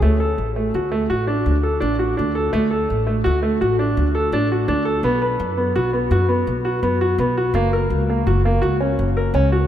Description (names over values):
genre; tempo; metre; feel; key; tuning
contemporary instrumental, chamber music in an uneven meter; 167 BPM; 7/4; straight; unclear; A4 = 438 Hz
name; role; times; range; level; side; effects
warm baby grand piano; arpeggios; 0.0-9.7 s; A3 to B4; -19 LUFS; right 1 dB; none
upright bass; bass; 0.0-9.7 s; F#1 to F#2; -21 LUFS; equal; none
room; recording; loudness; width
wet cathedral reverb, RT60 5.7 s; in a vast, echoing space; -17 LUFS; side -10 dB against mid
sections
0.0-9.7 A section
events
none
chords
0.0 D; 5.0 B5; 7.5 F#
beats
| 0.02 0.38 0.74 1.10 1.46 1.81 2.17 | 2.53 2.89 3.25 3.60 3.96 4.32 4.68 | 5.04 5.40 5.75 6.11 6.47 6.83 7.19 | 7.55 7.91 8.27 8.62 8.98 9.34